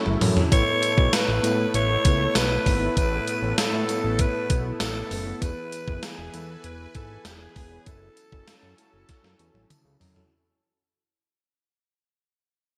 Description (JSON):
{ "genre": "1980s-style pop", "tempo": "98 BPM", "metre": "4/4", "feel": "straight", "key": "A major", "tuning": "A4 = 440 Hz", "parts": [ { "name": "raspy alto saxophone", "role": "melody", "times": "0.0-9.7 s", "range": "E4 to C#5", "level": "-30 LUFS", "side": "equal", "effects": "delay" }, { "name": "mellow tine electric piano", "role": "accompaniment", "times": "0.0-10.3 s", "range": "A2 to G#5", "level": "-33 LUFS", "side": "equal", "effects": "ensemble chorus" }, { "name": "lush unison pad", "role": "sustained chords", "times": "0.0-10.3 s", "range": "E3 to G#5", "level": "-38 LUFS", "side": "equal", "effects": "chorus" }, { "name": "fat analog bass", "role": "bass", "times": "0.1-10.2 s", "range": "E1 to A2", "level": "-30 LUFS", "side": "equal", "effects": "none" }, { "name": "gated 80s digital drum machine", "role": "drums", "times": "0.1-10.3 s", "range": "hi-hat, kick drum, snare drum, toms", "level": "-27 LUFS", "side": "equal", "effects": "gated reverb, gated reverb snare" }, { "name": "tambourine", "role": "percussion", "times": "0.5-10.2 s", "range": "none", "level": "-43 LUFS", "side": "equal", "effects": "none" } ], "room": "moderate lush hall reverb, RT60 2.0 s", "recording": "bright 1980s-style digital production", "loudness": "-23 LUFS", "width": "mono", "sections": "0.0-10.3 A section", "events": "fade-out 0.0-10.3; drum fill 0.0-0.5, 9.1-10.3", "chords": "0.0 F#m7; 0.5 Asus2; 5.4 E; 7.9 F#m7" }